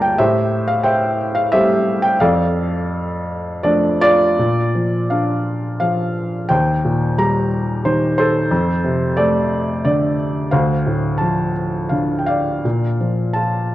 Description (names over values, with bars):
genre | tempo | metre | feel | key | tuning
classical, lyrical solo piano | 78-95 BPM | 3/4 | rubato | unclear | A4 = 439 Hz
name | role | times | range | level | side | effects
felt-muted upright piano | solo | 0.0-13.7 s | D2 to C6 | -15 LUFS | equal | none
room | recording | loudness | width
moderate concert hall reverb, RT60 2.2 s | worn, warbling old tape, cassette tape, warbly pitch drift | -15 LUFS | side -14 dB against mid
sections
0.0-4.4 A section; 4.4-13.7 B section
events
none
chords
0.2 Am7; 2.2 F6; 4.4 Bb; 6.5 Eb6; 8.5 F6; 10.5 Dm7; 12.6 Bb